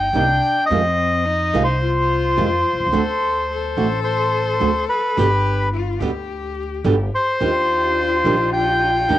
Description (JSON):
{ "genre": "tango", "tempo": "107 BPM", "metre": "4/4", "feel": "rubato", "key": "unclear", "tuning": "A4 = 439 Hz", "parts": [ { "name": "bandoneon", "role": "melody", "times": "0.0-9.2 s", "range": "B4 to G5", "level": "-18 LUFS", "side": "equal", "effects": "cassette tape" }, { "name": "warm cello", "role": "second line", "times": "0.0-9.2 s", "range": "C4 to A4", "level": "-25 LUFS", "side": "left 7 dB", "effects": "cassette tape" }, { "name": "upright bass", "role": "bass", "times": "0.0-9.2 s", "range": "G1 to F2", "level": "-24 LUFS", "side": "equal", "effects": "none" }, { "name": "flamenco guitar", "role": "accompaniment", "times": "0.1-9.2 s", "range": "B2 to G4", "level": "-21 LUFS", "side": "right 5 dB", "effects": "cassette tape" }, { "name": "muted studio string section", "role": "stabs", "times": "7.4-9.2 s", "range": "D4 to G4", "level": "-29 LUFS", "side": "right 6 dB", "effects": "cassette tape" } ], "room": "moderate spring reverb, RT60 1.3 s", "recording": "home recording on cassette, vinyl crackle", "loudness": "-16 LUFS", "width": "side -13 dB against mid", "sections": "0.0-9.2 A section", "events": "none", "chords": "0.0 Cm7; 0.7 F7(no3); 2.9 D7(no3); 5.2 G; 7.4 Ebmaj7" }